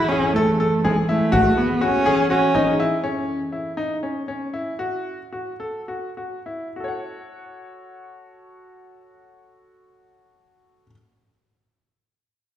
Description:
contemporary instrumental, chamber music in an uneven meter; 195-247 BPM (eighths); 7/8; straight; F# minor; A4 = 440 Hz
rich viola; second line; 0.0-2.8 s; G#3 to E4; -20 LUFS; right 1 dB
soft additive organ-like pad; sustained chords; 0.0-3.0 s; F#2 to A4; -27 LUFS; left 1 dB; ensemble chorus, built-in reverb
bright grand piano; arpeggios; 0.1-10.9 s; C#4 to F#5; -24 LUFS; left 1 dB
frame drum; percussion; 0.4-2.8 s; -28 LUFS; right 1 dB
wet recital hall reverb, RT60 1.6 s; heard from further back in the room; -19 LUFS; side -11 dB against mid
0.0-3.0 A section; 3.0-6.8 B section; 6.8-11.1 C section
slowing down 3.0-6.8
0.0 F#m9; 3.0 F#7(no3); 6.8 F#m

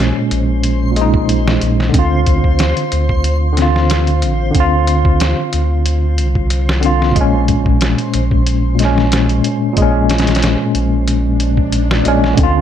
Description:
trip hop; 92 BPM; 4/4; swing 54% on 16ths; A4 = 443 Hz
tine electric piano; accompaniment; 0.0-12.6 s; Bb2 to F4; -15 LUFS; left 1 dB; overdrive, medium stereo tremolo, harmonic tremolo, tape echo
warm sub bass; bass; 0.0-12.6 s; A1 to D2; -16 LUFS; equal
trip hop sampler-style drum kit; drums; 0.0-12.5 s; hi-hat, kick drum, snare drum; -18 LUFS; equal
backwards swelling texture; texture; 0.0-12.4 s; C5; -27 LUFS; left 1 dB; built-in reverb
swell; sound effects; 11.3-12.4 s; -23 LUFS; left 1 dB
digital ambience; -12 LUFS; side -10 dB against mid
0.0-12.4 A section
swell 11.3-12.4
0.0 Bbm7; 1.9 Dm7; 7.2 Bbm7

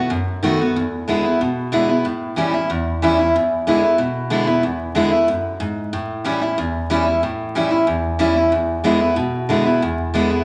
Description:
rock; 185 BPM; 4/4; straight; E mixolydian; A4 = 440 Hz
picked steel-string acoustic guitar; solo; 0.0-10.4 s; E2 to F#4; -19 LUFS; equal
moderate large studio reverb, RT60 1.5 s; vinyl crackle; -19 LUFS; mono
0.8-10.4 A section
0.0 B7; 0.8 E7; 2.1 A7; 3.4 E7; 5.9 A7; 8.5 E7

